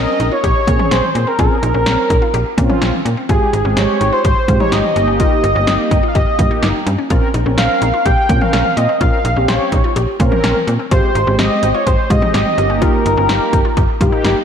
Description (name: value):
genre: synth-pop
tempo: 126 BPM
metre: 4/4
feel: straight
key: Bb dorian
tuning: A4 = 439 Hz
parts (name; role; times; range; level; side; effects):
- octave-doubled lead; melody; 0.0-14.2 s; Ab4 to G5; -17 LUFS; equal; chorus, tape echo
- mellow synth brass; accompaniment; 0.0-14.4 s; Ab3 to Bb4; -20 LUFS; right 1 dB; chorus
- wide unison pluck; arpeggios; 0.0-14.4 s; C4 to G4; -24 LUFS; left 4 dB; auto-pan, tape echo
- slap-like FM bass; bass; 0.0-14.4 s; G1 to Bb2; -18 LUFS; equal; none
- punchy analog drum machine; drums; 0.2-14.4 s; hi-hat, kick drum, snare drum, toms; -17 LUFS; equal; none
room: wet lush hall reverb, RT60 1.8 s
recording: dreamy mix soaked in reverb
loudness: -12 LUFS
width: side -8 dB against mid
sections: 0.0-14.4 A section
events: none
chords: 0.0 Bbmadd9; 3.3 Abmaj7; 5.0 Eb/G; 7.1 Bbmadd9; 10.9 Abmaj7; 12.6 Eb/G